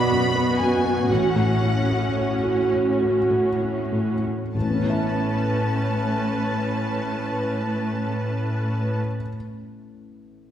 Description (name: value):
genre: cinematic, emotional film score for orchestra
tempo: 31-42 BPM (dotted quarters)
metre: 6/8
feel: rubato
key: A major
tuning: A4 = 439 Hz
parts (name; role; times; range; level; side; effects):
- clear symphonic violin section; melody; 0.0-9.0 s; F#5 to B5; -29 LUFS; left 1 dB; none
- felt-muted upright piano; accompaniment; 0.0-10.5 s; A1 to E5; -25 LUFS; left 1 dB; none
- rich symphonic viola section; accompaniment; 0.0-9.0 s; B3 to B4; -26 LUFS; right 2 dB; none
- rich symphonic cello section; bass; 0.0-9.0 s; A2 to B2; -26 LUFS; equal; none
room: wet scoring stage reverb, RT60 1.7 s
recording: heard from further back in the room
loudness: -20 LUFS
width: side -10 dB against mid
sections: 0.0-4.5 A section; 4.5-8.2 B section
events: slowing down 0.0-4.5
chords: 0.0 Bm; 1.1 F#m/A; 4.5 Aadd9